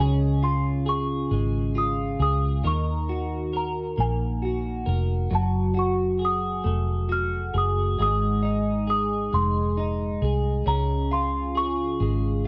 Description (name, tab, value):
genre	pop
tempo	45 BPM (dotted quarters)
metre	6/8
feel	straight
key	Db major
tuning	A4 = 439 Hz
part	small celesta	melody	0.0-12.5 s	Ab5 to F6	-31 LUFS	equal	none
part	twelve-string electric guitar	accompaniment	0.0-12.5 s	Ab2 to Bb4	-29 LUFS	equal	double-tracked
part	vintage muted fingered electric bass	bass	0.0-12.5 s	F1 to Eb2	-28 LUFS	equal	none
room	light reverb, small room reverb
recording	worn, warbling old tape, cassette tape, warbly pitch drift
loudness	-25 LUFS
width	mono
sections	0.0-12.5 A section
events	none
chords	0.0 Db; 2.6 Ebm7; 5.3 Gbmadd9; 8.0 Ab6; 10.7 Db